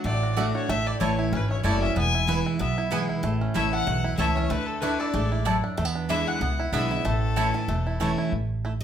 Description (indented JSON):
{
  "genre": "bluegrass",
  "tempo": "189 BPM",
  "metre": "4/4",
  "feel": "swing 55% on 8ths",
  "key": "A major",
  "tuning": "A4 = 439 Hz",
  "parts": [
    { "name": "bluegrass banjo", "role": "melody", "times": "0.0-8.7 s", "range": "E3 to A4", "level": "-32 LUFS", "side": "right 3 dB", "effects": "none" },
    { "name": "picked steel-string acoustic guitar", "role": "accompaniment", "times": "0.0-8.8 s", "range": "E2 to D#5", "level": "-28 LUFS", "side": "equal", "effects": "none" },
    { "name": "upright bass", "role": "bass", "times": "0.0-8.8 s", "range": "E1 to E2", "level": "-28 LUFS", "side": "equal", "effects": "none" },
    { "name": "clear fiddle", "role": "melody", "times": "0.1-8.0 s", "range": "A4 to G#5", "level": "-30 LUFS", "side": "left 3 dB", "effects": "none" },
    { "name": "lap resonator guitar", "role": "second line", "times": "0.1-8.0 s", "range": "A4 to G#5", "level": "-35 LUFS", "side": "left 2 dB", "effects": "none" },
    { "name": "mandolin", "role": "stabs", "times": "0.4-8.1 s", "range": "A3 to B5", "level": "-30 LUFS", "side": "right 2 dB", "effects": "none" }
  ],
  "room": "moderate large studio reverb, RT60 0.9 s",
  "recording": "band playing live in one room",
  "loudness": "-23 LUFS",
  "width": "side -9 dB against mid",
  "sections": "0.0-8.3 A section",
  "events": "none",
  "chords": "0.0 D; 0.7 A; 2.0 E; 3.2 A; 4.5 Dsus2; 5.8 E7; 7.0 A; 8.3 A5",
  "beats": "0.05 0.37 | 0.69 1.01 1.33 1.65 | 1.96 2.28 2.60 2.92 | 3.24 3.55 3.87 4.19 | 4.51 4.83 5.14 5.46 | 5.78 6.10 6.41 6.73 | 7.05 7.37 7.69 8.00 | 8.32 8.64"
}